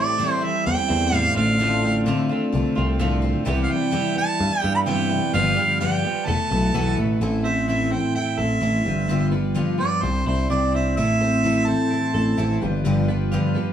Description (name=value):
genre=folk rock and heartland rock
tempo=128 BPM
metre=4/4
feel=straight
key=A minor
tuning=A4 = 441 Hz
part: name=warm harmonica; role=melody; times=0.0-12.6 s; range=C5 to B5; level=-24 LUFS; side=right 2 dB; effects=none
part: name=picked twelve-string acoustic guitar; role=accompaniment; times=0.0-13.7 s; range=E2 to A4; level=-26 LUFS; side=left 5 dB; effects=none
part: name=tonewheel organ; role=sustained chords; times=0.0-13.7 s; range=C4 to C5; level=-35 LUFS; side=left 2 dB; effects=slow rotary speaker
part: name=twelve-string electric guitar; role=riff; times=0.0-13.7 s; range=E2 to A4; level=-24 LUFS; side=right 2 dB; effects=none
part: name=picked electric bass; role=bass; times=0.7-13.4 s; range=E1 to G2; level=-23 LUFS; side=equal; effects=none
room=moderate studio ambience, RT60 0.5 s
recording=band playing live in one room, small room ambience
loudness=-19 LUFS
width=side -9 dB against mid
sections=0.0-7.2 A section; 7.2-13.7 B section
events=harmonica solo 7.2-13.7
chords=0.0 Am7; 1.4 F6/A; 3.5 Cmaj7; 5.3 G7; 6.3 Esus4; 7.2 Am; 8.9 G7; 10.0 Cadd9; 11.0 Am; 12.6 G7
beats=0.19 0.66 1.13 | 1.59 2.06 2.53 3.00 | 3.47 3.93 4.40 4.87 | 5.34 5.81 6.28 6.75 | 7.21 7.68 8.15 8.62 | 9.09 9.56 10.03 10.50 | 10.97 11.44 11.91 12.38 | 12.85 13.32